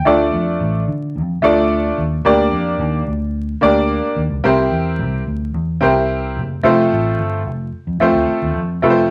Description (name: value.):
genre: uptempo 1960s-style soul.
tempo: 109 BPM.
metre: 4/4.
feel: straight.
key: unclear.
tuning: A4 = 439 Hz.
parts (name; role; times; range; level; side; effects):
clear upright piano; accompaniment; 0.0-9.1 s; A3 to D5; -17 LUFS; equal; none.
vintage muted fingered electric bass; bass; 0.0-9.1 s; F1 to D3; -23 LUFS; equal; none.
room: wet studio reverb, RT60 0.8 s.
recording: vinyl crackle.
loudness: -17 LUFS.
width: mono.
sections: 0.1-9.1 A section.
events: none.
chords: 0.1 Dm; 2.2 Gm/D; 4.4 C7; 6.6 F.